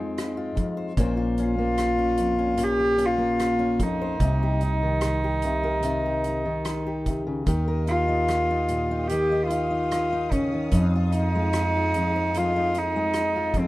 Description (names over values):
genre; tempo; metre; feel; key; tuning
acoustic folk-pop ballad; 74 BPM; 4/4; straight; F minor; A4 = 445 Hz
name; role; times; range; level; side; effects
warm cello; melody; 0.0-13.7 s; C4 to G4; -25 LUFS; equal; none
fingerpicked steel-string acoustic guitar; accompaniment; 0.0-13.7 s; F2 to C5; -27 LUFS; left 2 dB; none
mellow fretless electric bass; bass; 0.0-13.7 s; Bb1 to F2; -28 LUFS; equal; none
loose indie drum kit; drums; 0.2-13.7 s; hi-hat, kick drum, rim click; -30 LUFS; right 1 dB; none
warm studio string section; sustained chords; 7.5-13.7 s; G4 to Eb6; -41 LUFS; right 1 dB; none
room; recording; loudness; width
light reverb, studio ambience; rough home demo mix; -22 LUFS; side -17 dB against mid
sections
0.0-13.7 A section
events
none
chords
0.0 Fm7; 1.0 Bbmadd9; 4.2 Cm7; 7.5 Ebadd9; 10.7 Fm7